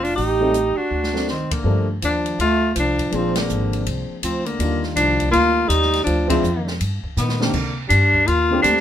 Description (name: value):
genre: jazz, small-group swing and bop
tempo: 163 BPM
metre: 4/4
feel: swing 64% on 8ths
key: G minor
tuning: A4 = 440 Hz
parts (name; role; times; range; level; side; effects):
- warm tenor saxophone; melody; 0.0-8.8 s; Bb3 to F4; -20 LUFS; left 3 dB; none
- mellow alto saxophone; second line; 0.0-8.8 s; D3 to G4; -24 LUFS; right 4 dB; none
- upright bass; bass; 0.0-8.8 s; F1 to C3; -23 LUFS; equal; none
- open jazz drum kit; drums; 0.0-8.8 s; crash cymbal, hi-hat, kick drum, ride cymbal, snare drum; -28 LUFS; equal; none
- dark concert grand piano; accompaniment; 0.4-8.8 s; D3 to G4; -24 LUFS; left 1 dB; none
room: moderate studio ambience, RT60 0.5 s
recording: minimal, uncompressed stereo recording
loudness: -17 LUFS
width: side -10 dB against mid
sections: 0.0-1.7 A section; 1.7-8.8 B section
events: drum fill 0.9-1.3, 7.2-7.5; band accent 1.5, 3.3, 6.3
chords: 0.2 Am7b5; 0.9 D7; 1.7 Gm9; 3.1 Bb7; 4.6 Ebmaj9; 6.1 Dm7b5; 6.8 Gm; 7.5 Cm9